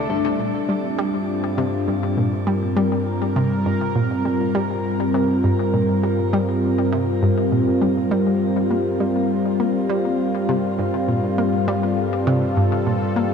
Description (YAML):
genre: ambient, sequencer-driven space music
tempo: 101 BPM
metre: 4/4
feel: straight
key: G dorian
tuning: A4 = 440 Hz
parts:
  - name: sweeping resonant pad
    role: sustained chords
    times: 0.0-13.3 s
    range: G3 to Bb4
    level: -20 LUFS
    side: left 1 dB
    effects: chorus, shimmer reverb
  - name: Celtic harp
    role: arpeggios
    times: 0.0-2.6 s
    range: D3 to D5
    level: -34 LUFS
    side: equal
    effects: auto-pan, ping-pong delay, shimmer reverb
  - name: analog drone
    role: bass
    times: 1.2-13.3 s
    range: G2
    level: -28 LUFS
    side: right 1 dB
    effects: chorus
  - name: analog pluck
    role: riff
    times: 0.1-13.3 s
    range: G2 to Bb3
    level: -24 LUFS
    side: equal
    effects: chorus, ping-pong delay, shimmer reverb
room: wet huge ambient reverb, RT60 8.0 s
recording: cassette tape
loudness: -18 LUFS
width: side -6 dB against mid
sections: 0.1-13.3 A section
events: none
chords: 0.1 Gmadd9